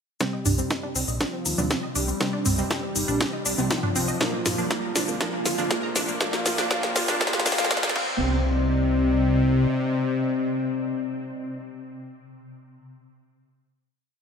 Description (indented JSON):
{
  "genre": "melodic techno",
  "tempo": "120 BPM",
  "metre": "4/4",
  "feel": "straight",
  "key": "C minor",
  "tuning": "A4 = 440 Hz",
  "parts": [
    { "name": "expressive portamento lead", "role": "melody", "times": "0.2-11.6 s", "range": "C4 to G4", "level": "-29 LUFS", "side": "left 2 dB", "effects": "analog chorus, sidechain pumping, ping-pong delay" },
    { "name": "soft supersaw", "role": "second line", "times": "0.2-11.6 s", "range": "C3 to G3", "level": "-33 LUFS", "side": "left 1 dB", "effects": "cassette tape, sidechain pumping, low-pass filter, digital delay" },
    { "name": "dark analog pad", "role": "sustained chords", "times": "2.2-11.6 s", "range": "C4 to D6", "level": "-36 LUFS", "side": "left 4 dB", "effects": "chorus, sidechain pumping" },
    { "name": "wide unison pluck", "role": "arpeggios", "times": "0.2-8.4 s", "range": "Bb3 to Bb5", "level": "-30 LUFS", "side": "right 2 dB", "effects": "phaser, sidechain pumping, digital delay" },
    { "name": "synth brass stab", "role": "stabs", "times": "0.2-11.6 s", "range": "Bb2 to C4", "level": "-33 LUFS", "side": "right 1 dB", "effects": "chorus, sidechain pumping, digital delay" },
    { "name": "swarming drone", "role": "drone", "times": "0.9-11.6 s", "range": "C3 to C4", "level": "-38 LUFS", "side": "left 1 dB", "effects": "built-in reverb, sidechain pumping" },
    { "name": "electronic kick drum", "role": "drums", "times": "0.2-8.1 s", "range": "none", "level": "-28 LUFS", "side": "equal", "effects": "overdrive, high-pass filter on kick, studio reverb" },
    { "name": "techno drum kit", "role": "drums", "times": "0.2-8.1 s", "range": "crash cymbal, hi-hat, shaker, snare drum, toms", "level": "-26 LUFS", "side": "equal", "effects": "overdrive, studio reverb" },
    { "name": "riser", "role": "sound effects", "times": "2.9-8.2 s", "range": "none", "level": "-35 LUFS", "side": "right 2 dB", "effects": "none" },
    { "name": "fat analog bass", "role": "bass", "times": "0.5-9.7 s", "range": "G1 to Bb2", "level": "-27 LUFS", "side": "equal", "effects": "sidechain pumping" }
  ],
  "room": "wet lush hall reverb, RT60 2.1 s",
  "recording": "bright 1980s-style digital production, high-pass filter",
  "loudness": "-22 LUFS",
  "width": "side -6 dB against mid",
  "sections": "0.2-8.2 build; 8.2-12.2 final hit",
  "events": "build-up 0.2-8.2; drum fill 0.2-8.2; filter sweep on synth pluck 0.2-8.2; filter sweep on analog synth lead 0.2-8.2; filter sweep on supersaw synth 0.2-8.2",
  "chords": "0.2 Cmadd9; 4.2 Bb; 8.0 Cmadd9"
}